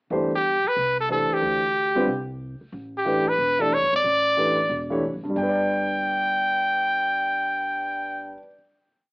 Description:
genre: modal jazz.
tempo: 183 BPM.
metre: 4/4.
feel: swing 64% on 8ths.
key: G major.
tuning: A4 = 440 Hz.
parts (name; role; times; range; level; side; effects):
warm concert grand piano; accompaniment; 0.1-8.5 s; G2 to D5; -26 LUFS; equal; none.
upright bass; bass; 0.1-8.4 s; E1 to D2; -36 LUFS; equal; none.
brilliant trumpet; melody; 0.4-8.4 s; G4 to G5; -21 LUFS; equal; plate reverb.
room: moderate studio reverb, RT60 0.6 s.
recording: worn, warbling old tape, cassette tape, warbly pitch drift, AM radio sound.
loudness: -20 LUFS.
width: side -33 dB against mid.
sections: 0.1-5.4 A section; 5.4-8.0 final chord.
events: none.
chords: 0.1 Gsus4; 2.7 A9sus4; 5.4 G.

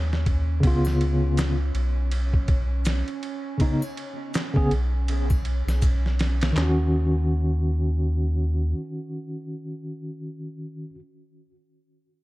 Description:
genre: trip hop.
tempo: 81 BPM.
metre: 4/4.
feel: swing 60% on 16ths.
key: Eb minor.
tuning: A4 = 439 Hz.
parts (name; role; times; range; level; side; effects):
soft dub sub bass; bass; 0.0-8.7 s; Cb2 to Eb2; -23 LUFS; equal; none.
bowed-like drone; texture; 0.0-6.6 s; Db4; -37 LUFS; right 5 dB; built-in reverb.
trip hop sampler-style drum kit; drums; 0.1-6.8 s; handclaps, kick drum, ride cymbal, snare drum; -26 LUFS; equal; studio reverb.
bright tine electric piano; accompaniment; 0.6-11.0 s; Db3 to Ab4; -26 LUFS; equal; tremolo, tape echo.
triangle and maracas; percussion; 0.8-6.0 s; none; -45 LUFS; left 4 dB; none.
room: digital ambience.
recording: dark, warm production.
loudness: -21 LUFS.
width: side -18 dB against mid.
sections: 0.0-6.6 A section; 6.6-9.5 B section.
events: none.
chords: 0.0 Eb7(no3); 0.6 Db7; 6.6 Ebm7.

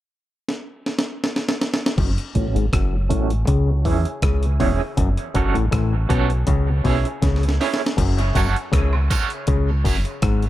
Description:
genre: dub reggae.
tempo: 80 BPM.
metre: 4/4.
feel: straight.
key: F# minor.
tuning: A4 = 440 Hz.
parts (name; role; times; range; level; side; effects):
breakbeat sampler-style drum kit; drums; 0.5-10.5 s; crash cymbal, hi-hat, kick drum, rim click, snare drum; -22 LUFS; equal; none.
auto-wah clav; riff; 2.0-10.4 s; E2 to E3; -26 LUFS; left 5 dB; low-pass filter, dub echo.
deep dub fingered electric bass; bass; 2.0-10.5 s; E1 to E2; -20 LUFS; equal; none.
electric guitar at the edge of break-up; accompaniment; 2.3-10.1 s; A3 to C#5; -26 LUFS; right 6 dB; tremolo, high-pass filter, low-pass filter, dub echo.
tambourine and woodblock; percussion; 8.4-10.0 s; none; -34 LUFS; right 5 dB; high-pass filter on perc, dub echo.
room: light reverb.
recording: echo-heavy mix.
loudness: -18 LUFS.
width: side -14 dB against mid.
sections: 0.0-2.0 A section; 2.0-8.0 B section; 8.0-10.5 C section.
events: drum fill 0.5-2.0, 7.2-8.0; filter sweep 2.0-10.5.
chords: 0.0 N.C.; 2.0 F#m; 3.5 C#m; 5.0 F#m; 6.5 C#m; 8.0 F#m; 9.5 C#m.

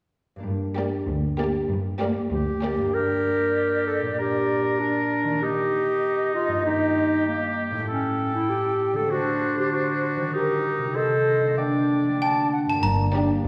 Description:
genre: cinematic, playful, whimsical film cue.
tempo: 97 BPM.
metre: 2/4.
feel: straight.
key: G minor.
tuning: A4 = 440 Hz.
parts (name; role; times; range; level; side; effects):
concert harp; arpeggios; 0.4-13.5 s; G2 to C5; -31 LUFS; equal; none.
rich studio cello section; bass; 0.5-2.8, 12.8-13.5 s; D2 to G2; -29 LUFS; equal; none.
rich studio violin section; melody; 0.8-2.9, 13.1-13.4 s; D5; -39 LUFS; equal; none.
rich studio violin section; second line; 0.8-2.9, 13.1-13.4 s; G4; -34 LUFS; equal; none.
warm studio viola section; accompaniment; 0.8-2.9, 13.2-13.4 s; Bb3 to D4; -32 LUFS; equal; none.
clear clarinet; second line; 2.3-12.5 s; Bb3 to Bb4; -27 LUFS; equal; none.
concert flute; second line; 2.9-12.6 s; Bb4 to A5; -33 LUFS; equal; none.
warm oboe; second line; 3.0-12.5 s; D4 to D5; -31 LUFS; equal; none.
trough xylophone with plastic mallets; melody; 12.2-13.5 s; G5 to Bb5; -29 LUFS; equal; none.
mellow French horn section; sustained chords; 12.8-13.5 s; Bb3 to D4; -30 LUFS; equal; none.
rich studio double bass section; bass; 12.8-13.3 s; G1; -31 LUFS; equal; none.
room: wet recital hall reverb, RT60 1.8 s.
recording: recorded in a church or concert hall.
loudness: -24 LUFS.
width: mono.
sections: 0.5-2.9 A section; 2.9-12.8 B section.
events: none.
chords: 0.5 Gm; 4.2 Gm/Bb; 5.4 Eb; 6.7 Eb/G; 7.9 A5; 9.1 D7; 10.3 Eb; 11.0 Adim/C; 11.6 Gm/D; 12.2 D; 12.8 Gm.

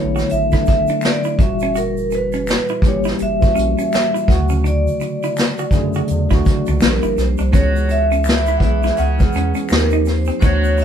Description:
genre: R&B, neo-soul.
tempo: 83 BPM.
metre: 4/4.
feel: swing 60% on 16ths.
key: unclear.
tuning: A4 = 441 Hz.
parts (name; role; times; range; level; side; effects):
vibraphone with hard mallets; melody; 0.0-10.8 s; A#4 to F#5; -21 LUFS; equal; none.
tine electric piano; accompaniment; 0.0-10.8 s; A#2 to G#4; -21 LUFS; left 1 dB; fast stereo tremolo.
round analog bass; bass; 0.0-10.8 s; F#1 to F#2; -20 LUFS; equal; none.
semi-hollow electric guitar; second line; 0.2-10.8 s; B#3 to F#4; -27 LUFS; right 4 dB; none.
vintage brush drum kit; drums; 0.2-10.8 s; hi-hat, kick drum, snare drum; -17 LUFS; equal; none.
egg shaker and finger snaps; percussion; 0.2-10.8 s; none; -35 LUFS; left 1 dB; none.
clear horn section; stabs; 7.5-10.8 s; C#3 to F#4; -27 LUFS; equal; none.
room: light reverb.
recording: band playing live in one room.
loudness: -14 LUFS.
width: side -8 dB against mid.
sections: 0.0-10.8 A section.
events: none.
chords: 0.0 Bm7; 1.4 F#7b9; 4.3 Dmaj7; 6.8 Bb6; 7.5 C#m7; 9.7 D#69.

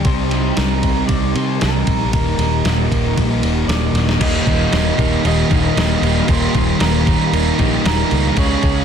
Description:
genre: rock, shoegaze and dream pop.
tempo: 115 BPM.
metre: 4/4.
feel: straight.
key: Eb major, Eb mixolydian from 4.2 s.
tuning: A4 = 443 Hz.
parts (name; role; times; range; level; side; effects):
string machine, full ensemble; sustained chords; 0.0-8.8 s; Eb4 to Eb6; -28 LUFS; left 1 dB; ensemble chorus.
crunchy overdriven guitar; riff; 0.0-8.8 s; Eb2 to Ab4; -21 LUFS; right 11 dB; reverse reverb.
thick fuzz guitar; riff; 0.0-8.8 s; Eb2 to Db4; -21 LUFS; left 11 dB; distortion, lush chorus.
vintage muted fingered electric bass; bass; 0.0-8.8 s; Eb1 to C3; -20 LUFS; equal; none.
clean 12-bit digital drum machine; drums; 0.0-8.8 s; crash cymbal, kick drum, ride cymbal, snare drum; -19 LUFS; equal; none.
electric guitar through a small old amp; melody; 0.1-8.8 s; Bb4 to Eb5; -26 LUFS; right 4 dB; wide subtle chorus, analog delay.
room: light reverb.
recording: dense, heavily limited modern master.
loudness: -14 LUFS.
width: side -7 dB against mid.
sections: 0.0-4.2 A section; 4.2-8.8 B section.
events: drum fill 4.0.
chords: 0.1 Cm7; 2.1 Ebmaj7; 4.2 Ebadd9.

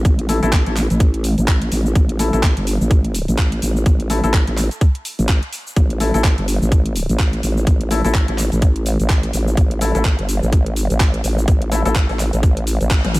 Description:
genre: bass house.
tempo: 126 BPM.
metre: 4/4.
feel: swing 58% on 16ths.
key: unclear.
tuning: A4 = 440 Hz.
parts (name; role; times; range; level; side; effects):
vowel-sweep wobble bass; bass; 0.0-13.2 s; G1 to A1; -18 LUFS; equal; chorus, overdrive, sidechain pumping.
electronic kick drum; drums; 0.1-13.0 s; none; -14 LUFS; equal; overdrive.
garage drum kit; drums; 0.1-13.2 s; cabasa, handclaps, hi-hat, toms; -24 LUFS; equal; overdrive.
clear concert grand piano; stabs; 0.3-11.9 s; A3 to A4; -24 LUFS; left 4 dB; sidechain pumping, digital delay.
room: digital ambience.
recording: none.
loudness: -15 LUFS.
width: side -20 dB against mid.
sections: 0.0-13.2 A section.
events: filter sweep on wobble bass 0.0-13.2; band accent 12.9; drum fill 13.0.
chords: 0.0 A5.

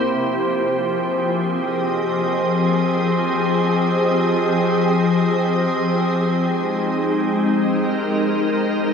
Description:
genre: ambient.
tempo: free time.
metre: none.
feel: none.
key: F minor.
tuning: A4 = 440 Hz.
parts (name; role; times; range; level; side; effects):
soft additive organ-like pad; sustained chords; 0.0-8.9 s; C3 to Eb5; -18 LUFS; left 1 dB; ensemble chorus, built-in reverb.
glass harmonica; texture; 0.0-8.9 s; C5 to C6; -26 LUFS; right 2 dB; none.
room: wet cathedral reverb, RT60 6.5 s.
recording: in a vast, echoing space.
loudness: -17 LUFS.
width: side -6 dB against mid.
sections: 0.1-8.9 A section.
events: fade-out on glass harmonica 0.1-8.9.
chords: 0.1 Fm7; 6.4 Abmaj7.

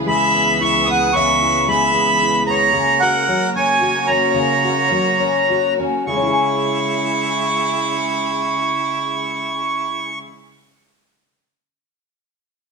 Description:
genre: acoustic folk duo or small band.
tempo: 99-113 BPM.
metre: 3/4.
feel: straight.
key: C# dorian.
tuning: A4 = 440 Hz.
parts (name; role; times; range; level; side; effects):
fingerpicked steel-string acoustic guitar; accompaniment; 0.0-10.4 s; C#3 to G#4; -21 LUFS; left 3 dB; none.
rich studio string section; sustained chords; 0.0-10.2 s; C#2 to B4; -27 LUFS; right 1 dB; none.
accordion; melody; 0.1-10.2 s; F#5 to D#6; -18 LUFS; right 2 dB; none.
warm harmonica; second line; 0.1-10.2 s; E4 to F#5; -21 LUFS; right 2 dB; none.
room: moderate stone room reverb, RT60 1.1 s.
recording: band playing live in one room.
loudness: -15 LUFS.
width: side -4 dB against mid.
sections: 0.0-6.1 A section; 6.1-9.7 B section.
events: slowing down 2.7-6.1.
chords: 0.0 E/C#; 2.7 F#/C#; 6.1 C#m.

